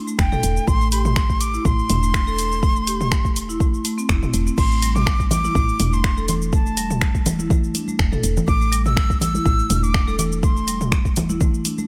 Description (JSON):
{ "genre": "afro house", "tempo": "123 BPM", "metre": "4/4", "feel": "swing 54% on 16ths", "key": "A minor", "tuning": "A4 = 441 Hz", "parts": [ { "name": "marimba with hard mallets", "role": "arpeggios", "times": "0.1-11.9 s", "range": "G3 to A4", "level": "-29 LUFS", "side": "equal", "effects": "sidechain pumping, digital delay" }, { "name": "deep house drum kit", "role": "drums", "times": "0.1-11.9 s", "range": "crash cymbal, finger snaps, hi-hat, shaker, toms", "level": "-28 LUFS", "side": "equal", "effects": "studio reverb" }, { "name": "breathy bright jazz flute", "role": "melody", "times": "0.2-11.1 s", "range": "G5 to E6", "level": "-28 LUFS", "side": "equal", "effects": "digital delay" }, { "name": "woody FM bass", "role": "bass", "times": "0.2-11.6 s", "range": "E1 to A1", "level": "-26 LUFS", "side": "equal", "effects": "sidechain pumping" }, { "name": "electronic kick drum", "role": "drums", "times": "0.2-11.5 s", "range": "none", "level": "-22 LUFS", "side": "equal", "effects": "studio reverb" }, { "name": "congas", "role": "percussion", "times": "5.0-11.9 s", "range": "none", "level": "-28 LUFS", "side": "equal", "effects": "none" } ], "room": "little or no reverb", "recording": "none", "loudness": "-20 LUFS", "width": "mono", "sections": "0.0-11.9 A section", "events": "none", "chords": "0.0 Am" }